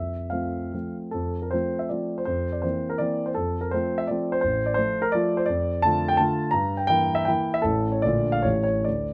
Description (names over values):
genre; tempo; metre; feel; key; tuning
classical, romantic triple-time dance for piano with dotted rhythms; 133-183 BPM; 3/4; rubato; F major, D minor from 5.5 s; A4 = 440 Hz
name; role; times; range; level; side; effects
warm concert grand piano; solo; 0.0-9.1 s; A1 to Bb5; -25 LUFS; equal; none
room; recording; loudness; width
light reverb; close, detailed microphones; -25 LUFS; mono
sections
0.0-1.1 A section; 1.1-9.1 A section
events
none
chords
0.0 F; 2.3 C7/F; 3.4 F; 4.4 F/A; 5.5 Dm/F; 6.5 Edim/G; 7.6 A; 8.0 Bbmaj7; 8.4 A7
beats
0.31 0.74 | 1.15 1.53 1.92 | 2.28 2.64 3.00 | 3.36 3.73 4.09 | 4.43 4.77 5.14 | 5.49 5.83 6.20 | 6.54 6.91 7.28 | 7.65 8.04 8.45 | 8.86